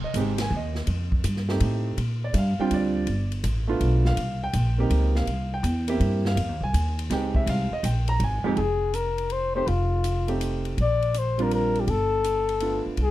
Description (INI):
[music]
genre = jazz, small-group swing and bop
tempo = 164 BPM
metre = 3/4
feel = swing 66% on 8ths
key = unclear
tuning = A4 = 440 Hz
[part]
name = warm concert grand piano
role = accompaniment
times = 0.0-13.0 s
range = F2 to Bb5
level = -27 LUFS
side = right 3 dB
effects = none
[part]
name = upright bass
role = bass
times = 0.0-13.1 s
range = F1 to Bb2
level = -25 LUFS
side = equal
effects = none
[part]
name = swinging big-band drum kit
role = drums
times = 0.1-13.1 s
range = hi-hat, kick drum, ride cymbal, snare drum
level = -33 LUFS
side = equal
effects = none
[part]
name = mellow flugelhorn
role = melody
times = 8.6-13.1 s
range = F4 to D5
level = -25 LUFS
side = left 5 dB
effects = none
[sound]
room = light reverb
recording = dark, warm production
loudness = -22 LUFS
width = side -15 dB against mid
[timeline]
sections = 0.0-8.6 A section; 8.6-13.1 B section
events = none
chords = 0.0 Fm7 (rootless); 0.9 F7; 2.0 Bb6; 3.1 G7; 4.2 Cm7; 5.3 C7; 6.4 Fm7; 8.6 F7; 10.8 Bb6; 11.9 G7